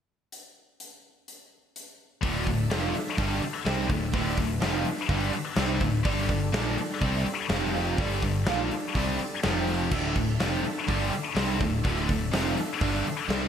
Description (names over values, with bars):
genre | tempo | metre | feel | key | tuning
hard rock | 125 BPM | 4/4 | straight | unclear | A4 = 440 Hz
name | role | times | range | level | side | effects
big rock drum kit | drums | 0.3-13.4 s | crash cymbal, hi-hat, kick drum, snare drum | -30 LUFS | equal | gated reverb
overdriven tonewheel organ | sustained chords | 2.2-13.5 s | F3 to E5 | -39 LUFS | equal | slow rotary speaker, chorus vibrato
overdriven semi-hollow guitar | riff | 2.2-13.5 s | D2 to C4 | -32 LUFS | right 10 dB | ensemble chorus
scooped high-gain guitar | riff | 2.2-13.5 s | D2 to C4 | -30 LUFS | left 6 dB | distortion
picked electric bass | bass | 2.2-13.5 s | D1 to C2 | -32 LUFS | equal | none
room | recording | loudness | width
light reverb, studio ambience | bright 1980s-style digital production | -24 LUFS | side -8 dB against mid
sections
0.3-2.2 A section; 2.2-13.5 B section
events
none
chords
0.3 N.C.; 2.2 D5; 6.1 G5; 7.5 F5; 8.0 G5; 9.4 F5; 9.9 D5